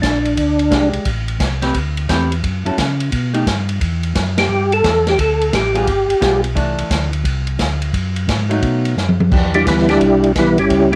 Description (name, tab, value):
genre	soul jazz organ trio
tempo	174 BPM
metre	4/4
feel	swing 65% on 8ths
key	E minor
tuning	A4 = 440 Hz
part	percussive tonewheel organ	melody	0.0-0.9, 4.4-6.4, 9.5-11.0 s	E3 to A4	-16 LUFS	equal	slow rotary speaker, chorus vibrato, cassette tape, plate reverb
part	mellow tonewheel organ	bass	0.0-11.0 s	G1 to C#3	-22 LUFS	equal	slow rotary speaker
part	swinging big-band drum kit	drums	0.0-11.0 s	crash cymbal, hi-hat, kick drum, ride cymbal, snare drum, toms	-22 LUFS	equal	cassette tape
part	vintage hollow-body jazz guitar	accompaniment	0.7-3.5, 5.7-11.0 s	E3 to B4	-23 LUFS	equal	none
room	light reverb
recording	home recording on cassette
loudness	-16 LUFS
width	mono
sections	0.0-9.3 A section; 9.3-11.0 B section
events	band accent 4.3; drum fill 9.0-9.3; tonewheel organ solo 9.3-11.0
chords	0.0 A#13; 1.1 Am9; 2.4 F#m7; 3.1 B7b13; 3.8 Emadd9; 5.2 Dm; 5.9 G7b9; 6.6 C69; 7.9 F#madd9; 8.6 B7; 9.3 Em7